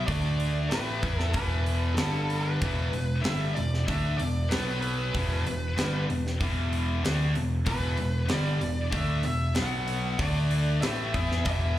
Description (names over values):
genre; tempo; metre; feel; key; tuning
hard rock; 95 BPM; 4/4; straight; E minor; A4 = 445 Hz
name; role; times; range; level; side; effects
high-gain lead guitar; melody; 0.0-11.8 s; A4 to F#5; -34 LUFS; equal; distortion, slapback echo, analog delay
high-gain distorted guitar; riff; 0.0-11.8 s; E2 to E4; -32 LUFS; left 6 dB; distortion, slapback echo
tight distorted guitar; riff; 0.0-11.8 s; E2 to E4; -35 LUFS; right 7 dB; distortion, slapback echo
picked electric bass; bass; 0.0-11.8 s; E1 to E2; -28 LUFS; equal; none
tight metal drum kit; drums; 0.1-11.6 s; hi-hat, kick drum, snare drum; -33 LUFS; equal; none
room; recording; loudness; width
small room ambience; live gig heard through the venue's PA, club ambience; -25 LUFS; side -13 dB against mid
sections
0.0-11.8 A section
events
none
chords
0.1 D5; 0.7 E5; 2.0 G5; 2.6 Em; 4.5 B5; 5.1 Em; 9.6 B5; 10.2 D5; 10.8 E5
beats
| 0.08 0.71 1.34 1.98 | 2.61 3.24 3.88 4.51 | 5.14 5.77 6.40 7.03 | 7.66 8.29 8.93 9.56 | 10.19 10.82 11.45